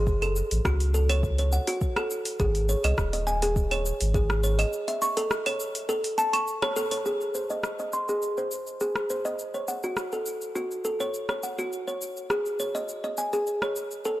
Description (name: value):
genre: organic downtempo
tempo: 103 BPM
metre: 4/4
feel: straight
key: unclear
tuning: A4 = 438 Hz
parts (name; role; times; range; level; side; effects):
- kalimba; arpeggios; 0.0-14.2 s; F#4 to C#6; -27 LUFS; equal; low-pass filter, tape echo
- warm sub bass; bass; 0.0-4.6 s; D#1 to C#2; -25 LUFS; equal; tube saturation
- deep house drum kit; drums; 0.1-14.2 s; cabasa, claves, hi-hat, rim click; -32 LUFS; equal; none
- electronic kick drum; drums; 0.1-4.3 s; none; -28 LUFS; equal; none
room: light reverb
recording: dry, gritty hardware recording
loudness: -25 LUFS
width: side -16 dB against mid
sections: 0.0-7.1 A section; 7.1-14.2 B section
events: band accent 6.6; filter sweep on kalimba 7.1-14.2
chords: 0.1 F#m; 2.4 C#sus2; 4.7 A; 7.1 G#; 9.4 F#m; 11.7 C#5/G#